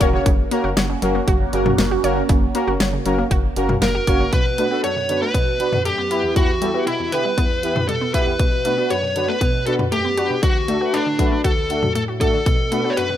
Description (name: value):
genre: synth-pop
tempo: 118 BPM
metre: 4/4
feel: straight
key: B minor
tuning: A4 = 444 Hz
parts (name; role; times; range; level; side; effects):
- analog synth brass; accompaniment; 0.0-13.2 s; D2 to C#5; -22 LUFS; equal; chorus
- phased analog pad; sustained chords; 0.0-4.3 s; A#3 to F#4; -26 LUFS; right 3 dB; phaser, chorus
- analog pluck; arpeggios; 0.0-13.2 s; E2 to D5; -26 LUFS; left 1 dB; chorus, analog delay
- rubbery square bass; bass; 0.0-4.3 s; E1 to F#1; -24 LUFS; equal; none
- pop drum kit; drums; 0.0-13.1 s; cowbell, hi-hat, kick drum, snare drum, toms; -20 LUFS; equal; none
- smooth overdriven lead guitar; melody; 3.8-13.2 s; D4 to C#5; -21 LUFS; equal; none
room: light reverb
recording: rough home demo mix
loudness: -17 LUFS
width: side -11 dB against mid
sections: 0.3-4.3 A section; 4.3-13.2 B section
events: none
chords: 0.3 F#; 4.3 Bm7; 6.1 Em; 8.4 Bm7; 10.4 D; 12.5 Bm7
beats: | 0.26 0.77 1.28 1.78 | 2.29 2.80 3.31 3.82 | 4.33 4.84 5.34 5.85 | 6.36 6.87 7.38 7.89 | 8.39 8.90 9.41 9.92 | 10.43 10.94 11.45 11.95 | 12.46 12.97